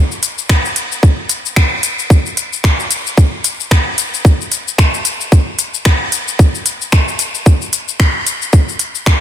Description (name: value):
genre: downtempo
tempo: 112 BPM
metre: 4/4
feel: swing 58% on 16ths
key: none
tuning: none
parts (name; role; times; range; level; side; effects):
- organic electronic drum kit; drums; 0.1-9.2 s; finger snaps, hi-hat, shaker; -15 LUFS; left 2 dB; overdrive, soft clipping on snare
- electronic kick drum; drums; 0.5-9.2 s; none; -10 LUFS; equal; overdrive
room: light reverb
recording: dense, heavily limited modern master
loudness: -11 LUFS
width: side -11 dB against mid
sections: 0.0-9.2 A section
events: none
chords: none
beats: 0.50 1.03 1.57 | 2.11 2.64 3.18 3.71 | 4.25 4.78 5.32 5.86 | 6.39 6.93 7.46 8.00 | 8.53 9.07